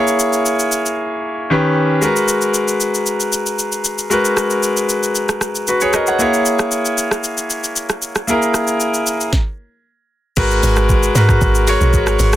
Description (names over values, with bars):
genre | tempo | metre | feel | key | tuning
amapiano | 115 BPM | 4/4 | straight | G# minor | A4 = 440 Hz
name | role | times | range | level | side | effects
bright grand piano | accompaniment | 0.0-12.4 s | D#3 to F#5 | -16 LUFS | left 1 dB | none
smooth R&B drum kit | drums | 0.1-12.4 s | crash cymbal, hi-hat, kick drum, rim click, shaker, snare drum | -19 LUFS | equal | soft clipping on snare
woody log drum bass | bass | 10.4-12.4 s | G#1 to G#2 | -15 LUFS | right 1 dB | none
room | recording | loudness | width
little or no reverb | dense, heavily limited modern master | -14 LUFS | side -13 dB against mid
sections
0.0-10.4 A section; 10.4-12.4 B section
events
silent gap 1.0-2.0; stop 9.3-10.4; drop 10.4-12.4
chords
0.0 A#m7b5; 1.5 D#7b13; 2.0 G#m9; 6.2 A#m7b5; 9.8 N.C.; 10.4 G#m9